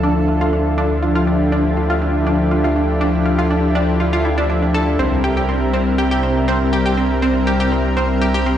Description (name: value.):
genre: house.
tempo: 121 BPM.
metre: 4/4.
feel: straight.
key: D minor.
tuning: A4 = 440 Hz.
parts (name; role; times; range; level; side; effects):
lush unison pad; sustained chords; 0.0-8.6 s; C3 to Bb4; -22 LUFS; equal; chorus.
analog pluck; arpeggios; 0.0-8.5 s; C4 to A4; -21 LUFS; right 1 dB; wide subtle chorus, dub echo.
soft supersaw; stabs; 0.0-8.6 s; F3 to E5; -19 LUFS; left 2 dB; low-pass filter, dub echo.
saturated sub bass; bass; 0.0-8.6 s; C2 to D2; -20 LUFS; equal; none.
room: moderate lush hall reverb, RT60 2.4 s.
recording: played on a big sound system in a bare room, large studio reverb, nothing above 10.5 kHz.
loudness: -14 LUFS.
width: side -10 dB against mid.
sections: 0.0-8.6 A section.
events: filter sweep on synth pluck 0.0-8.6.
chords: 0.0 Dmadd9; 5.0 C7.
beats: 0.03 0.53 | 1.02 1.52 2.02 2.51 | 3.01 3.50 4.00 4.50 | 4.99 5.49 5.98 6.48 | 6.97 7.47 7.97 8.46.